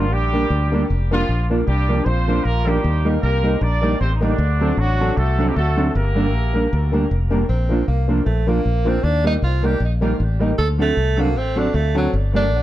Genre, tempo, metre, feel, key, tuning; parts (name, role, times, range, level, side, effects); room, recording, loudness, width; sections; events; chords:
ska; 155 BPM; 4/4; swing 57% on 8ths; Bb major; A4 = 439 Hz
clear horn section; melody; 0.0-7.1 s; D3 to D5; -24 LUFS; right 2 dB; tape echo
mellow electric guitar; accompaniment; 0.0-12.4 s; F3 to Eb4; -24 LUFS; right 3 dB
dark upright piano; stabs; 0.0-12.5 s; Bb3 to Bb4; -26 LUFS; left 2 dB
fingered electric bass; bass; 0.0-12.6 s; F1 to Eb2; -19 LUFS; equal
warm tenor saxophone; melody; 7.5-12.6 s; F#3 to A4; -23 LUFS; right 2 dB; tape echo
moderate club reverb, RT60 0.7 s; dark, warm production; -16 LUFS; side -14 dB against mid
0.0-7.5 A section; 7.5-12.6 B section
tenor saxophone solo 7.5-12.6
0.0 Gm; 1.3 Bb; 2.8 Eb; 4.4 D7; 5.9 Gm; 7.5 Bb; 9.0 Eb; 10.6 D7; 12.1 Gm